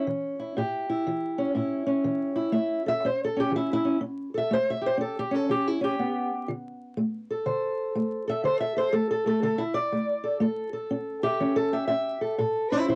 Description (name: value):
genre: acoustic country blues, solo or duo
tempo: 122 BPM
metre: 4/4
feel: swing 64% on 8ths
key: A mixolydian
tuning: A4 = 440 Hz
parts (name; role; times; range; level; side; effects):
- fingerpicked steel-string acoustic guitar; solo; 0.0-13.0 s; A2 to E5; -27 LUFS; equal; cassette tape
room: light reverb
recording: home recording on cassette, vinyl crackle, nothing above 10.4 kHz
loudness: -27 LUFS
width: mono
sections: 0.0-13.0 A section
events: steel-string acoustic guitar solo 0.0-13.0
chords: 0.0 A7; 6.5 D5; 10.4 A7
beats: 0.08 | 0.57 1.06 1.55 2.05 | 2.54 3.03 3.52 4.01 | 4.50 5.00 5.49 5.98 | 6.47 6.96 7.46 7.95 | 8.44 8.93 9.42 9.91 | 10.40 10.90 11.39 11.88 | 12.37 12.86